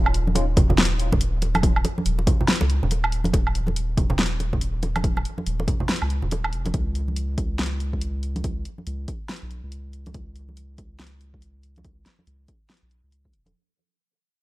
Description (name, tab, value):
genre	deep dubstep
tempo	141 BPM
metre	4/4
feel	swing 61% on 16ths, half-time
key	unclear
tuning	A4 = 435 Hz
part	soft dub sub bass	bass	0.0-13.5 s	Eb1 to Db2	-26 LUFS	equal	none
part	deep house drum kit	drums	0.1-13.5 s	hi-hat, snare drum, woodblock	-25 LUFS	equal	none
part	congas	percussion	0.3-13.5 s	none	-28 LUFS	right 1 dB	dub echo
part	electronic kick drum	drums	0.6-13.3 s	none	-23 LUFS	equal	none
room	digital ambience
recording	none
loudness	-21 LUFS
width	side -18 dB against mid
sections	0.0-13.5 A section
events	fade-out 0.0-13.5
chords	none